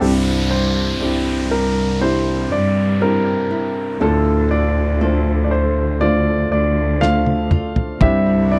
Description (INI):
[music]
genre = pop ballad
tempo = 60 BPM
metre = 4/4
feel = straight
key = unclear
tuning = A4 = 440 Hz
[part]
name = warm concert grand piano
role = melody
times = 0.0-8.6 s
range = G4 to F5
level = -24 LUFS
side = equal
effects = none
[part]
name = felt-muted upright piano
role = accompaniment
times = 0.0-8.6 s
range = G2 to C5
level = -23 LUFS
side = equal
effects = none
[part]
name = flamenco guitar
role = arpeggios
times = 0.0-8.6 s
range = C3 to A4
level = -31 LUFS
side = equal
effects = none
[part]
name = clear studio cello section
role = bass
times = 0.0-8.6 s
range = C2 to G2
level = -22 LUFS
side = equal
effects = none
[part]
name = downlifter and noise sweep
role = sound effects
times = 0.0-8.6 s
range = none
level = -32 LUFS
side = equal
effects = none
[part]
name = damped 70s drum kit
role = drums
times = 7.0-8.2 s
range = kick drum, snare drum, toms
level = -19 LUFS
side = equal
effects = none
[part]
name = warm studio string section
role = sustained chords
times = 8.0-8.6 s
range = D3 to E4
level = -40 LUFS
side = equal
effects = none
[sound]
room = light reverb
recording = dry, close 1970s-style studio recording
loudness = -18 LUFS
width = mono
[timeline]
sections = 0.0-8.6 A section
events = drum fill 7.0-8.0; noise sweep 8.2-8.6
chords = 0.0 Cadd9; 4.0 Dm; 8.0 Cadd9